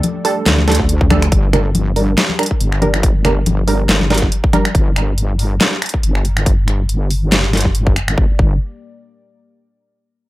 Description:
deep dubstep; 140 BPM; 4/4; swing 55% on 16ths, half-time; G minor; A4 = 440 Hz
dark analog pad; sustained chords; 0.0-1.3, 8.3-8.4 s; A3 to D5; -29 LUFS; right 2 dB; chorus
dubstep drum kit; drums; 0.0-8.2 s; finger snaps, handclaps, hi-hat, snare drum; -17 LUFS; equal; overdrive
congas; percussion; 0.0-4.6 s; -22 LUFS; left 3 dB; dub echo
filtered dub chord stab; stabs; 0.2-4.7 s; G3 to Bb4; -20 LUFS; right 3 dB; chorus, dub echo
wobble bass; bass; 0.5-8.6 s; G1 to D2; -16 LUFS; equal; chorus
electronic kick drum; drums; 0.8-8.5 s; -15 LUFS; equal; overdrive
light reverb; -12 LUFS; side -17 dB against mid
0.0-1.3 A section; 1.3-8.2 B section; 8.2-9.9 C section
drop 0.0-1.3; filter sweep on wobble bass 1.3-8.2
0.0 Dsus4; 1.3 Gm
0.03 0.46 0.89 | 1.32 1.75 2.18 2.60 | 3.03 3.46 3.89 4.32 | 4.75 5.18 5.61 6.03 | 6.46 6.89 7.32 7.75 | 8.18

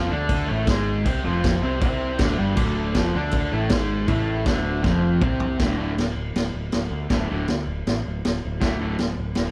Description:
garage rock duo or trio; 159 BPM; 4/4; straight; D minor; A4 = 438 Hz
raw garage guitar; riff; 0.0-9.0 s; D2 to D4; -26 LUFS; equal; overdrive
growling picked electric bass; bass; 0.0-9.5 s; D1 to D2; -29 LUFS; equal; overdrive, tube saturation
vintage drum kit; drums; 0.3-9.4 s; crash cymbal, kick drum, snare drum, toms; -27 LUFS; equal
light reverb; band playing live in one room; -23 LUFS; mono
0.0-5.6 A section; 5.6-9.5 B section
drum fill 4.8-5.6
0.0 Dm; 5.6 D5
0.31 0.69 | 1.06 1.44 1.82 2.20 | 2.58 2.96 3.33 3.71 | 4.09 4.46 4.84 5.22 | 5.60 5.97 6.35 6.73 | 7.11 7.48 7.86 8.24 | 8.62 8.99 9.37

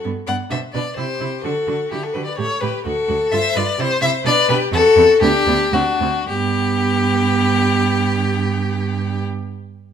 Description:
quick classical-period movement for string quartet; 108-131 BPM; 2/4; straight; G major; A4 = 442 Hz
rich violin; melody; 0.0-9.2 s; D4 to G5; -26 LUFS; left 6 dB
rich violin; second line; 0.0-9.2 s; F#4 to F#5; -18 LUFS; left 3 dB
rich viola; accompaniment; 0.0-9.2 s; B3 to G4; -25 LUFS; right 5 dB
rich cello; bass; 0.1-9.2 s; D2 to D3; -23 LUFS; right 6 dB
moderate recital hall reverb, RT60 1.4 s; close, detailed microphones; -16 LUFS; side -8 dB against mid
0.0-6.3 A section; 6.3-8.5 B section
slowing down 3.8-6.3
0.0 G; 0.5 Bm; 1.0 C; 1.4 D; 2.4 A7; 2.9 D; 3.3 G7; 3.8 C; 4.3 G; 4.7 C; 5.2 G/D; 5.7 D7; 6.3 G
0.04 | 0.50 0.96 | 1.43 1.91 | 2.38 2.86 | 3.32 3.79 | 4.25 4.72 | 5.21 5.73 | 6.28 6.83 | 7.37 7.92

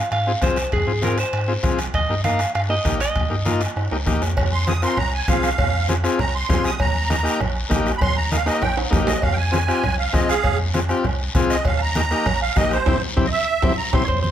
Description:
latin, cumbia; 198 BPM; 4/4; straight; F minor; A4 = 440 Hz
clean electric guitar; second line; 0.0-4.0, 14.0-14.3 s; Ab4 to F5; -24 LUFS; right 1 dB
pure sine sub bass; bass; 0.0-14.3 s; Bb1 to Ab2; -24 LUFS; equal
bombo; percussion; 0.1-14.2 s; -24 LUFS; equal
congas; percussion; 0.1-14.3 s; -28 LUFS; right 1 dB
guiro; percussion; 0.1-14.3 s; -32 LUFS; left 4 dB
timbales and cowbell; percussion; 0.1-14.2 s; -31 LUFS; right 4 dB
combo organ; accompaniment; 0.3-14.0 s; Bb3 to Bb4; -24 LUFS; left 3 dB
musette accordion; melody; 4.5-14.1 s; Ab4 to Eb6; -23 LUFS; right 4 dB; plate reverb
light reverb; -18 LUFS; side -10 dB against mid
0.0-4.4 A section; 4.4-14.1 B section
clean electric guitar solo 0.0-4.4; drum fill 3.8-4.4, 8.5-9.2, 12.9-14.1; accordion solo 4.4-14.1; band accent 12.9-14.1
0.0 Fm; 1.9 Eb; 4.4 Fm; 6.8 Eb; 9.2 Fm; 11.7 Eb; 12.9 C
0.11 0.41 | 0.72 1.02 1.33 1.63 | 1.94 2.24 2.54 2.85 | 3.15 3.46 3.76 4.07 | 4.37 4.67 4.98 5.28 | 5.58 5.89 6.19 6.50 | 6.80 7.10 7.41 7.71 | 8.01 8.32 8.62 8.92 | 9.23 9.53 9.83 10.14 | 10.44 10.74 11.05 11.35 | 11.65 11.96 12.26 12.57 | 12.87 13.17 13.48 13.78 | 14.09

